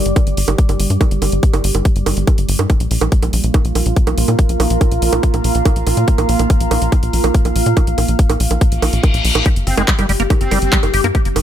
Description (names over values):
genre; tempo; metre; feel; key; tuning
psychedelic trance; 142 BPM; 4/4; straight; unclear; A4 = 438 Hz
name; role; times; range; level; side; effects
tight sequencer bass; bass; 0.0-11.4 s; G1 to Bb2; -17 LUFS; equal; none
deep dark ambient pad; texture; 0.0-11.4 s; G3 to D6; -21 LUFS; right 2 dB; chorus, built-in reverb, sidechain pumping
drum and bass drum kit; drums; 0.1-11.4 s; bongos, handclaps, hi-hat; -21 LUFS; right 5 dB; overdrive
electronic kick drum; drums; 0.2-11.2 s; none; -13 LUFS; equal; none
reverse cymbal; sound effects; 8.8-9.5 s; none; -21 LUFS; left 4 dB; none
overtone-sweeping drone; sustained chords; 9.7-11.4 s; G3 to G4; -23 LUFS; left 4 dB; chorus, built-in reverb, sidechain pumping
liquid acid bass; riff; 9.5-11.2 s; G3 to G4; -20 LUFS; moving between left 6 dB and right 2 dB; chorus, auto-pan, sidechain pumping, tape echo
metallic wobble bass; second line; 9.7-10.8 s; C4; -26 LUFS; right 1 dB; chorus, sidechain pumping, high-pass filter, ping-pong delay
room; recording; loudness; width
little or no reverb; none; -12 LUFS; side -10 dB against mid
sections
0.0-11.4 A section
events
reverse cymbal 8.8-9.5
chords
0.0 G5; 2.7 Bb5; 9.5 G5